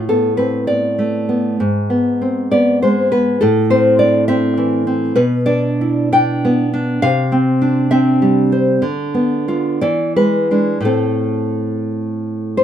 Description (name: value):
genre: romantic piece for solo classical guitar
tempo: 56-69 BPM (dotted quarters)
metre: 6/8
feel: rubato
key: A minor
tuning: A4 = 438 Hz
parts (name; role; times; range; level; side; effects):
- nylon-string guitar; solo; 0.0-12.6 s; G#2 to G5; -13 LUFS; equal; none
room: light reverb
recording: minimal, uncompressed stereo recording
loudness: -13 LUFS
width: side -10 dB against mid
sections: 0.0-12.6 A section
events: none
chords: 0.0 Amadd9; 1.6 G#dim; 3.4 Am; 5.2 G/B; 7.0 C; 8.8 Bdim/D; 9.8 E7; 10.9 Am